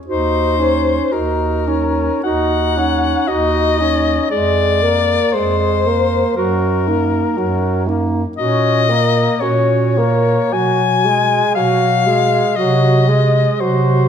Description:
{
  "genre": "classical, lyrical piece for single-reed quartet",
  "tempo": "58 BPM",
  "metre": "4/4",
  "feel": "uneven beats, rubato",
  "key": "unclear",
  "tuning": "A4 = 440 Hz",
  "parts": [
    { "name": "warm soprano saxophone", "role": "melody", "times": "0.1-14.1 s", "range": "Bb4 to G#5", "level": "-17 LUFS", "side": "left 7 dB", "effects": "none" },
    { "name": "warm clarinet", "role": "second line", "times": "0.1-14.1 s", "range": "Eb4 to A#4", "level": "-20 LUFS", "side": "right 8 dB", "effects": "none" },
    { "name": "mellow tenor saxophone", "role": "accompaniment", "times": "0.1-14.1 s", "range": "Gb3 to Eb4", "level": "-21 LUFS", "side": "left 2 dB", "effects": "none" },
    { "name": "mellow bass clarinet", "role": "bass", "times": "0.1-14.1 s", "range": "Eb2 to B#2", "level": "-19 LUFS", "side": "right 2 dB", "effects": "none" }
  ],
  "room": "wet recital hall reverb, RT60 1.6 s",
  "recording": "none",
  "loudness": "-13 LUFS",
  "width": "side -8 dB against mid",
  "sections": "0.0-14.1 A section",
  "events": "none",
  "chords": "0.1 Ebm7; 4.3 Bb7/F; 6.4 Ebm/Gb; 8.4 F#/A#; 10.5 G#m7/B; 12.6 G#7/B#"
}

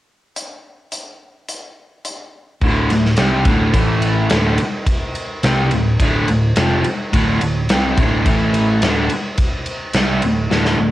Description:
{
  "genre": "hard rock",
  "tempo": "107 BPM",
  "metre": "4/4",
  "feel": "straight",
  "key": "D minor",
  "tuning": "A4 = 440 Hz",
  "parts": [
    { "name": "big rock drum kit", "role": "drums", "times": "0.4-10.8 s", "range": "hi-hat, kick drum, ride cymbal, snare drum", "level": "-19 LUFS", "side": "equal", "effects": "cassette tape" },
    { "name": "overdriven electric guitar", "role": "riff", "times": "2.6-10.9 s", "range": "D2 to C4", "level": "-16 LUFS", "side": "equal", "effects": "cassette tape" },
    { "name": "picked electric bass", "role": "bass", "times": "2.6-10.9 s", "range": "D1 to C2", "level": "-20 LUFS", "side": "equal", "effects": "none" }
  ],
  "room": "little or no reverb",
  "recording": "home recording on cassette",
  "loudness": "-14 LUFS",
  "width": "side -15 dB against mid",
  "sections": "0.4-2.6 A section; 2.6-10.9 B section",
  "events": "drum fill 10.5-10.9",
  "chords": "0.4 N.C.; 2.6 D5; 3.8 A5; 4.3 Dm; 8.3 A5; 8.8 D5"
}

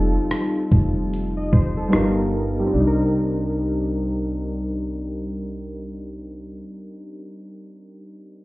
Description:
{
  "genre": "lo-fi hip hop",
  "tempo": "74 BPM",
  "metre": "4/4",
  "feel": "swing 61% on 16ths",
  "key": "C dorian",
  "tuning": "A4 = 435 Hz",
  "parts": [
    { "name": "warbly lo-fi synth keys", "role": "accompaniment", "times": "0.0-8.4 s", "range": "G3 to Eb5", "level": "-23 LUFS", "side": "equal", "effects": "chorus, cassette tape, plate reverb" },
    { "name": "upright bass", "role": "bass", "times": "0.0-6.6 s", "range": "F1 to C2", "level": "-26 LUFS", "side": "equal", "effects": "none" },
    { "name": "dusty soul sampler-style drum kit", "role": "drums", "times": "0.3-2.2 s", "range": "hi-hat, kick drum, rim click", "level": "-19 LUFS", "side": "equal", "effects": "none" }
  ],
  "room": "moderate small room reverb, RT60 0.5 s",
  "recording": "heard muffled through a wall, stone room reverb, EQ, low-pass filter",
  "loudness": "-19 LUFS",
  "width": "side -20 dB against mid",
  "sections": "0.0-2.7 A section; 2.7-6.0 B section",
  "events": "filter sweep 0.0-2.7",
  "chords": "0.0 F9; 1.9 G7alt; 2.7 Cm9"
}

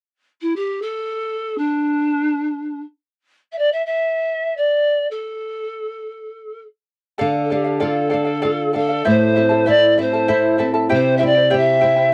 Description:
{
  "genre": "andean folk, Andean ensemble",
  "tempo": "free time",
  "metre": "none",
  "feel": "none",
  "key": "unclear",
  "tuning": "A4 = 440 Hz",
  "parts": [
    { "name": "bright reedy pan flute", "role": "melody", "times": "0.4-12.1 s", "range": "D4 to E5", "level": "-20 LUFS", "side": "equal", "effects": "none" },
    { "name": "charango", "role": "accompaniment", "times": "7.2-12.1 s", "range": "E4 to A5", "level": "-23 LUFS", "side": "equal", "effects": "none" },
    { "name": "flamenco guitar", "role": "accompaniment", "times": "7.2-12.1 s", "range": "A2 to G4", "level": "-22 LUFS", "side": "equal", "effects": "none" }
  ],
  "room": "moderate booth ambience, RT60 0.2 s",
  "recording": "dry, close 1970s-style studio recording",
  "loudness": "-19 LUFS",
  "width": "mono",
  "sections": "0.0-7.2 A section; 7.2-12.1 B section",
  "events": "none",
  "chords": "0.0 N.C.; 7.2 Dm; 9.1 Am; 10.9 C"
}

